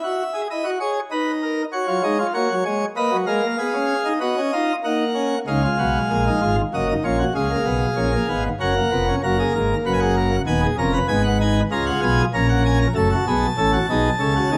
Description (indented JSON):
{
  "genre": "classical, baroque-style 4-part fugue for pipe organ",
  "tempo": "96 BPM",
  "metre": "3/4",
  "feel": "straight",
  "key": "unclear",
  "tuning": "A4 = 441 Hz",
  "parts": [
    { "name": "pipe organ, plenum", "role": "solo", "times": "0.0-14.6 s", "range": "D#1 to A#5", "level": "-21 LUFS", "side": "equal", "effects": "none" }
  ],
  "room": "moderate recital hall reverb, RT60 1.6 s",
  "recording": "none",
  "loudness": "-21 LUFS",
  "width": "mono",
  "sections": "0.0-5.5 A section; 5.5-14.6 B section",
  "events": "none",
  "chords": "0.0 C#m; 1.1 B/D#; 1.7 F#; 3.6 G#m/B; 4.8 F#/A#; 5.5 C#7; 6.7 F#; 7.4 C#; 8.6 F#; 10.5 B/D#; 11.1 Fdim/Ab; 12.3 A#m; 12.9 D#m7b5/F#",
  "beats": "0.50 1.12 | 1.74 2.35 2.97 | 3.59 4.22 4.84 | 5.47 6.10 6.73 | 7.35 7.98 8.61 | 9.23 9.85 10.47 | 11.09 11.71 12.33 | 12.95 13.57 14.20"
}